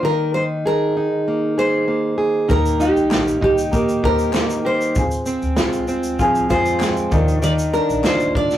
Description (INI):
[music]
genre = acoustic pop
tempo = 97 BPM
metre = 4/4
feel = straight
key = Eb major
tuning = A4 = 439 Hz
[part]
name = nylon-string guitar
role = melody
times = 0.0-8.6 s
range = G4 to D5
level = -21 LUFS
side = equal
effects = none
[part]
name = fingerpicked plugged-in steel-string acoustic guitar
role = accompaniment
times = 0.0-8.6 s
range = Eb3 to Ab4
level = -20 LUFS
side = right 1 dB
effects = none
[part]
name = warm upright piano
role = accompaniment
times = 2.5-8.6 s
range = C4 to C5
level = -25 LUFS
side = left 1 dB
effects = none
[part]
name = twelve-string electric guitar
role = arpeggios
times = 2.5-8.6 s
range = Eb3 to G4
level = -29 LUFS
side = right 2 dB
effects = none
[part]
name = upright bass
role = bass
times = 2.5-8.6 s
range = F1 to F2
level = -25 LUFS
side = equal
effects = none
[part]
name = unplugged drum kit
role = drums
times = 2.5-8.6 s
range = kick drum, shaker, snare drum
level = -23 LUFS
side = equal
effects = none
[part]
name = group handclap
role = percussion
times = 3.1-8.2 s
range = none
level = -33 LUFS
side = left 2 dB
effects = none
[sound]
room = light reverb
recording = rough rehearsal-room recording, warm saturation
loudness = -16 LUFS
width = side -12 dB against mid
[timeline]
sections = 0.0-8.6 A section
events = none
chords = 0.0 Absus2/Eb; 2.5 Eb; 5.0 Fm; 7.1 Bb